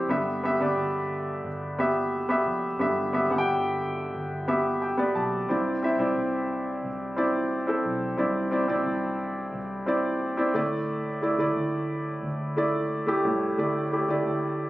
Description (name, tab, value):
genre	pop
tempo	89 BPM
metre	4/4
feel	straight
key	C major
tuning	A4 = 440 Hz
part	clear upright piano	accompaniment	0.0-14.7 s	G2 to A5	-25 LUFS	equal	plate reverb
part	vintage muted fingered electric bass	bass	0.0-14.7 s	F1 to D2	-37 LUFS	equal	none
room	moderate studio reverb, RT60 0.8 s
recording	recorded on a phone in the room, studio ambience, compression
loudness	-24 LUFS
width	side -16 dB against mid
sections	0.0-14.7 A section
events	upright piano fill 4.1-5.5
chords	0.1 G6; 5.5 Cadd9